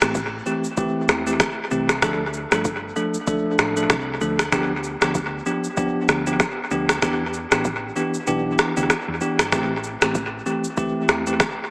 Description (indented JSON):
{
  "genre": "afrobeats",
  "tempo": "96 BPM",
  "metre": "4/4",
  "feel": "swing 58% on 16ths",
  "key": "A minor",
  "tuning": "A4 = 439 Hz",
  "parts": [
    { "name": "bell-like tine electric piano", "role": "accompaniment", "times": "0.0-11.4 s", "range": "E3 to A4", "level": "-23 LUFS", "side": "equal", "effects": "fast stereo tremolo, dub echo" },
    { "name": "hollow-body short-scale fingered electric bass", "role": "bass", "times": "0.0-11.4 s", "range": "G1 to E2", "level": "-31 LUFS", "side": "equal", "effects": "none" },
    { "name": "afro-pop drum kit", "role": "drums", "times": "0.0-11.6 s", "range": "finger snaps, kick drum, rim click, shaker", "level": "-21 LUFS", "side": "equal", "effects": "overdrive, dub echo" }
  ],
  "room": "wet spring reverb, RT60 2.0 s",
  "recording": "echo-heavy mix, small speaker sound",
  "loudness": "-19 LUFS",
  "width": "side -28 dB against mid",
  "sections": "0.0-11.7 A section",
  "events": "kick muted 8.3-9.5",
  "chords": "0.0 Am7; 2.0 Dm; 4.5 G7/D; 7.0 Em7; 9.5 Am7"
}